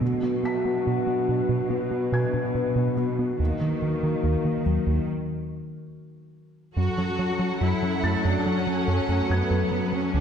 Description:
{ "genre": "cinematic, hybrid orchestral and electronic film score", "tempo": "71 BPM", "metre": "4/4", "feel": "straight", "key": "F# minor", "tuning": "A4 = 440 Hz", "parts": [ { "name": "dark French horn section", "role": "sustained chords", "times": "0.0-5.0 s", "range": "A#3 to F#4", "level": "-29 LUFS", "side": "left 3 dB", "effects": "none" }, { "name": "warbly tape-like pad", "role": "sustained chords", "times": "0.0-10.2 s", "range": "F#3 to B4", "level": "-32 LUFS", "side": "left 2 dB", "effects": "chorus, built-in reverb" }, { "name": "harp-like synth pluck", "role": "arpeggios", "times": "0.0-10.2 s", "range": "D3 to B4", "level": "-31 LUFS", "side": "left 2 dB", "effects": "chorus, ping-pong delay" }, { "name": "rubbery square bass", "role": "riff", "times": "0.0-10.2 s", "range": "D2 to B3", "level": "-26 LUFS", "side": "right 2 dB", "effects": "none" }, { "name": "rich symphonic cello section", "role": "bass", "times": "0.0-10.2 s", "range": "B2 to F#4", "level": "-31 LUFS", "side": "right 2 dB", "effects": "none" }, { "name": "felt-muted upright piano", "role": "texture", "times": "0.0-10.2 s", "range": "G#5 to B6", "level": "-38 LUFS", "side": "left 1 dB", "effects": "ping-pong delay" }, { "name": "rich studio violin section", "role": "second line", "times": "6.8-10.2 s", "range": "A4 to F#5", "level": "-32 LUFS", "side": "left 2 dB", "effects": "none" }, { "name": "clear symphonic viola section", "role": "accompaniment", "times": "6.8-10.2 s", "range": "F#3 to D4", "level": "-32 LUFS", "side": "left 3 dB", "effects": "none" } ], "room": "wet scoring stage reverb, RT60 1.5 s", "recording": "heard from further back in the room", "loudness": "-22 LUFS", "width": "side -8 dB against mid", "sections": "0.0-6.8 A section; 6.8-10.2 A section", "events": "break 5.1-6.8", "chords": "0.0 Bm; 3.4 D#m; 6.8 F#m" }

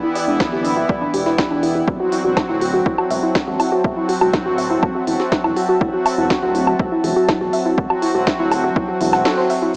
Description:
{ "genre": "melodic techno", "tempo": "122 BPM", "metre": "4/4", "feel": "straight", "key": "unclear", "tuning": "A4 = 440 Hz", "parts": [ { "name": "deep dark ambient pad", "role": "sustained chords", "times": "0.0-9.8 s", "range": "E4 to A5", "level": "-25 LUFS", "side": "equal", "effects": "chorus, built-in reverb, sidechain pumping" }, { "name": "soft round pluck", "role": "arpeggios", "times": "0.0-9.7 s", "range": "D4 to F#5", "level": "-20 LUFS", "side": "equal", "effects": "chorus, sidechain pumping, analog delay" }, { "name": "brassy analog pad", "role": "stabs", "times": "0.0-9.8 s", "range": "E3 to F#4", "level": "-21 LUFS", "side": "equal", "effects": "chorus, sidechain pumping, analog delay" }, { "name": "techno drum kit", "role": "drums", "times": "0.2-9.6 s", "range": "hi-hat, snare drum, woodblock", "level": "-22 LUFS", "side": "equal", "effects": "none" }, { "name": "fat analog bass", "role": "bass", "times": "0.3-9.3 s", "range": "D1 to B1", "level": "-27 LUFS", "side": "equal", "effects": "sidechain pumping" }, { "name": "electronic kick drum", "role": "drums", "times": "0.4-8.9 s", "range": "none", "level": "-21 LUFS", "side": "equal", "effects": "overdrive" } ], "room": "moderate lush hall reverb, RT60 2.3 s", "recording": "dry, gritty hardware recording, small speaker sound", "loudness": "-15 LUFS", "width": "side -33 dB against mid", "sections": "0.0-9.7 A section", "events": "filter sweep on synth arpeggio sound 0.0-9.7; band accent 9.3", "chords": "0.0 Em7; 1.9 F#m7b5" }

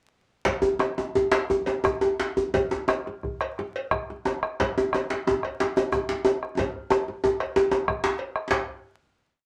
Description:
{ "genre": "west african traditional, West African drum ensemble", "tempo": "114-131 BPM (dotted quarters)", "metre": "12/8", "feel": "straight", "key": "none", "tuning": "none", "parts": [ { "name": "bombo", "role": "percussion", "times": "0.5-8.7 s", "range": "none", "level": "-32 LUFS", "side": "equal", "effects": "none" }, { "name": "cowbell", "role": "percussion", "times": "0.5-8.7 s", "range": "none", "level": "-36 LUFS", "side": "equal", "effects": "none" }, { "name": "djembe", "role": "percussion", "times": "0.5-8.7 s", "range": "none", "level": "-37 LUFS", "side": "equal", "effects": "none" }, { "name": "djembe", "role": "percussion", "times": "0.5-8.7 s", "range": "none", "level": "-26 LUFS", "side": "equal", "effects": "none" } ], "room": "wet small room reverb, RT60 0.5 s", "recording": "vinyl crackle", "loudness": "-26 LUFS", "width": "mono", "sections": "0.5-8.5 A section; 8.5-9.5 final hit", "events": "speeding up 0.5-9.5; drum fill 6.6-8.5", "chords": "none" }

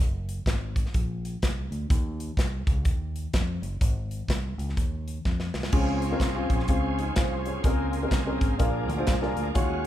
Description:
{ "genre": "uptempo gospel", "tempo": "125 BPM", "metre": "4/4", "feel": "swing 62% on 8ths", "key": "unclear", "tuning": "A4 = 440 Hz", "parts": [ { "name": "fingered electric bass", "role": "bass", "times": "0.0-9.9 s", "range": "Gb1 to F2", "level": "-31 LUFS", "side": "equal", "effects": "none" }, { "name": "modern studio drum kit", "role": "drums", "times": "0.3-9.9 s", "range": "crash cymbal, hi-hat, kick drum, snare drum", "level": "-26 LUFS", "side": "equal", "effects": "none" }, { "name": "warm upright piano", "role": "accompaniment", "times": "5.7-9.9 s", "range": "Bb2 to Db5", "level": "-28 LUFS", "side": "left 1 dB", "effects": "none" }, { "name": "bright tonewheel organ", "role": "sustained chords", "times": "5.7-9.9 s", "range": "Db3 to Ab4", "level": "-33 LUFS", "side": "right 2 dB", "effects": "slow rotary speaker, overdrive, chorus vibrato" } ], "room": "light reverb", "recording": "none", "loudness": "-24 LUFS", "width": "side -12 dB against mid", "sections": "0.0-9.9 A section", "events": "drum fill 5.2-5.7", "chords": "0.0 Gbsus2; 0.9 Bb; 1.9 Ebsus2; 3.8 Absus4; 5.7 Dbmaj7; 7.6 Bbm9/Db; 8.6 Bb7" }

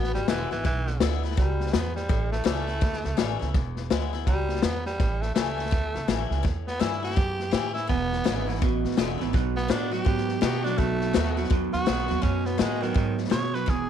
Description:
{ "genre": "rockabilly", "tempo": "166 BPM", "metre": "4/4", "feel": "swing 62% on 8ths", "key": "unclear", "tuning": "A4 = 440 Hz", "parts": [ { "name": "growling tenor saxophone", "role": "melody", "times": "0.0-13.9 s", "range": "D#3 to C#5", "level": "-31 LUFS", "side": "right 2 dB", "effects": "none" }, { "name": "picked swing-style acoustic guitar", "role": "accompaniment", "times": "0.0-13.9 s", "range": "E2 to F#4", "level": "-33 LUFS", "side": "left 11 dB", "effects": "none" }, { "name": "upright bass", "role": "bass", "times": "0.0-13.9 s", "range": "E1 to B2", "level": "-29 LUFS", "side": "right 2 dB", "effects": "none" }, { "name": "vintage drum kit", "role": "drums", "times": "0.0-13.8 s", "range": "hi-hat, kick drum, snare drum", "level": "-27 LUFS", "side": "left 2 dB", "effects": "none" }, { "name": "electric guitar through a small old amp", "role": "riff", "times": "7.9-13.9 s", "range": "E2 to G#3", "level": "-30 LUFS", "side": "right 15 dB", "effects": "none" } ], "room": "light reverb, studio ambience", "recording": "1960s-style stereo with parts hard left and right", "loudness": "-23 LUFS", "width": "side -9 dB against mid", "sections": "0.0-13.9 A section", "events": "none", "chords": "0.0 E7; 2.1 A7; 3.5 E7; 5.0 A7; 7.9 E7; 9.3 B7" }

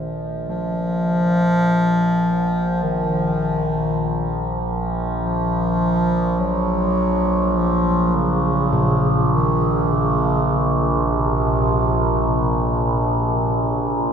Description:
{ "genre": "dark ambient drone", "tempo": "free time", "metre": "none", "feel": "none", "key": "Bb harmonic minor", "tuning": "A4 = 440 Hz", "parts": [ { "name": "gamelan-type bossed gongs", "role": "arpeggios", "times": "0.0-14.1 s", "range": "Bb2 to A3", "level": "-29 LUFS", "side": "left 2 dB", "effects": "none" }, { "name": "overtone-sweeping drone", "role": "drone", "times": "0.0-14.1 s", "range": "Bb1", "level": "-20 LUFS", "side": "right 1 dB", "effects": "chorus, built-in reverb" }, { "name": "mellow bass clarinet", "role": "melody", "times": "0.5-14.0 s", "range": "Bb2 to Gb3", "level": "-20 LUFS", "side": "left 1 dB", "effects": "tape echo" } ], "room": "wet cathedral reverb, RT60 6.7 s", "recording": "in a vast, echoing space", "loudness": "-17 LUFS", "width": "side -7 dB against mid", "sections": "0.0-14.1 A section", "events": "fade-in on synth drone 0.0-14.1", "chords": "0.0 Bb5" }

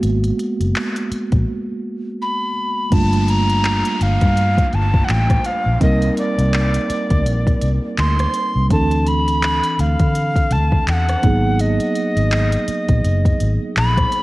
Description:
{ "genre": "contemporary R&B", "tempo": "83 BPM", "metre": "4/4", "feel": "swing 58% on 16ths", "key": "unclear", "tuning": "A4 = 440 Hz", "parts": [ { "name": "mellow tine electric piano", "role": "accompaniment", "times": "0.0-14.2 s", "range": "E3 to Bb4", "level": "-22 LUFS", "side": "right 2 dB", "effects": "medium stereo tremolo" }, { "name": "vintage muted fingered electric bass", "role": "bass", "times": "0.0-14.0 s", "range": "Gb1 to D3", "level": "-18 LUFS", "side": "equal", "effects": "none" }, { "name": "smooth R&B drum kit", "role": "drums", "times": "0.0-14.2 s", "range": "handclaps, hi-hat, kick drum, rim click", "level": "-20 LUFS", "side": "equal", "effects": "none" }, { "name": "soprano recorder", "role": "melody", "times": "2.2-14.2 s", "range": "D5 to C6", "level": "-21 LUFS", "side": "equal", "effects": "tape echo" }, { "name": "downlifter", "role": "sound effects", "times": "2.9-8.7 s", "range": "none", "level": "-33 LUFS", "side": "left 1 dB", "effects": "none" } ], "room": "digital ambience", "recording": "worn, warbling old tape, cassette tape, warbly pitch drift", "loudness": "-15 LUFS", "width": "side -19 dB against mid", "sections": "0.0-2.9 A section; 2.9-14.2 B section", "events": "break 1.5-2.9", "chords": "0.0 Abm9; 2.9 Gm9; 5.8 Cm9; 8.7 Dm9; 11.2 Abm9" }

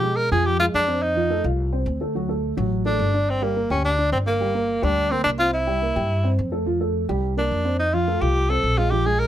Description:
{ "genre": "Afro-Cuban jazz", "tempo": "213 BPM", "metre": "4/4", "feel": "straight", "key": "unclear", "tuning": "A4 = 439 Hz", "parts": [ { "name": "breathy tenor saxophone", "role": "melody", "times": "0.0-9.3 s", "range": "Bb3 to Bb4", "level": "-22 LUFS", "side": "equal", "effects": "none" }, { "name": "dark upright piano", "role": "accompaniment", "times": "0.0-9.3 s", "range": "F3 to G5", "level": "-25 LUFS", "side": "right 2 dB", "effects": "none" }, { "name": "upright bass", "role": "bass", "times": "0.0-9.3 s", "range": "G1 to B2", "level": "-24 LUFS", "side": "equal", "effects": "none" } ], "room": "light reverb", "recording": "close, detailed microphones", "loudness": "-19 LUFS", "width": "side -11 dB against mid", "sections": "0.0-7.8 A section; 7.8-9.3 A section", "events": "none", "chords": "0.0 Bdim7; 1.0 F6; 2.1 D; 3.3 Gm; 5.5 C6; 6.7 Fadd9; 7.2 Csus2; 7.8 Fadd9" }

